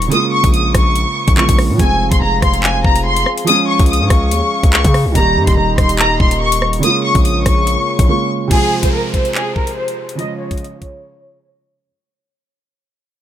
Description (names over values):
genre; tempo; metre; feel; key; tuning
hip hop, drill; 143 BPM; 4/4; half-time; F minor; A4 = 440 Hz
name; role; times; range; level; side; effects
felt-muted upright piano; accompaniment; 0.0-11.9 s; C3 to Ab4; -20 LUFS; right 5 dB; low-pass filter
hard-hitting 808-style bass; bass; 0.0-8.1 s; Eb1 to Db3; -17 LUFS; equal; none
drill drum kit; drums; 0.0-10.9 s; crash cymbal, handclaps, hi-hat, kick drum, rim click; -15 LUFS; equal; none
warm studio violin section; melody; 0.1-11.6 s; Ab4 to Eb6; -17 LUFS; left 2 dB; low-pass filter, tape echo
mellow French horn section; sustained chords; 1.8-11.8 s; F2 to F5; -24 LUFS; left 2 dB; low-pass filter
downlifter; sound effects; 8.5-11.9 s; none; -28 LUFS; equal; none
room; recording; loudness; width
small room ambience; none; -12 LUFS; side -11 dB against mid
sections
0.0-8.5 A section; 8.5-11.9 B section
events
drums muted 8.1-8.5; fade-out 8.5-11.9; filter sweep 8.5-11.9; break 11.0-11.9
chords
0.1 Bbm7; 1.8 Fm; 3.5 Db; 5.2 Eb; 6.8 Bbm7; 8.5 Fm; 10.2 Db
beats
| 0.12 0.54 0.96 1.38 | 1.80 2.21 2.63 3.06 | 3.47 3.89 4.31 4.73 | 5.15 5.57 5.99 6.41 | 6.83 7.25 7.67 8.09 | 8.51 8.93 9.35 9.77 | 10.19 10.61 11.03 11.45